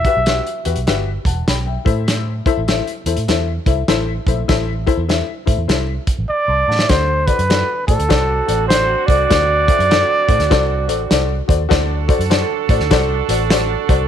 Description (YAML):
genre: uptempo 1960s-style soul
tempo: 100 BPM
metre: 4/4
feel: swing 63% on 8ths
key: unclear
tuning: A4 = 441 Hz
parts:
  - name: breathy trumpet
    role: melody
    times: 0.0-0.9, 6.3-11.5 s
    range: A4 to E5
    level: -17 LUFS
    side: right 1 dB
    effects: none
  - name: warm upright piano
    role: accompaniment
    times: 0.0-14.0 s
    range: A2 to C6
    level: -21 LUFS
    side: left 12 dB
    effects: none
  - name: vintage muted fingered electric bass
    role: bass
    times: 0.0-14.1 s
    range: E1 to A2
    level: -20 LUFS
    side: right 1 dB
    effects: none
  - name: warm soul drum kit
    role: drums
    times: 0.0-14.0 s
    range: hi-hat, kick drum, snare drum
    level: -18 LUFS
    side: right 1 dB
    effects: none
  - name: dark saxophone section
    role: second line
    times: 8.1-14.1 s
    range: C4 to A4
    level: -22 LUFS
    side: right 15 dB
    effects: none
room: light reverb, small room ambience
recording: 1960s-style stereo with parts hard left and right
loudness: -14 LUFS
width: side -9 dB against mid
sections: 0.0-6.9 A section; 6.9-14.1 B section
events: drum fill 6.3-6.9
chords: 0.0 Emadd9; 1.8 Am; 6.9 D7